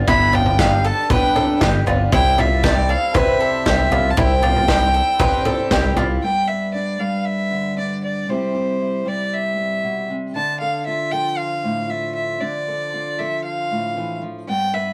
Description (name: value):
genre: indie folk with a building arrangement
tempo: 116 BPM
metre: 4/4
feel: straight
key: G mixolydian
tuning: A4 = 440 Hz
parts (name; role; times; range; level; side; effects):
- picked twelve-string acoustic guitar; accompaniment; 0.0-6.2 s; G2 to G4; -26 LUFS; equal; none
- bowl-back mandolin; arpeggios; 0.0-6.2 s; E4 to B4; -26 LUFS; equal; none
- fingered electric bass; bass; 0.0-6.2 s; G1 to C2; -22 LUFS; equal; none
- warm fiddle; melody; 0.1-14.9 s; C5 to B5; -23 LUFS; equal; none
- loose indie drum kit; drums; 0.1-6.1 s; kick drum, snare drum, toms; -22 LUFS; equal; none
- fingerpicked steel-string acoustic guitar; accompaniment; 6.2-14.9 s; G2 to B4; -28 LUFS; equal; none
room: moderate small room reverb, RT60 0.5 s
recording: rough rehearsal-room recording, warm saturation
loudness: -19 LUFS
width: mono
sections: 0.0-6.2 A section; 6.2-14.9 B section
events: none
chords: 0.0 G; 2.1 C; 6.2 G; 8.3 C; 10.3 Dmadd9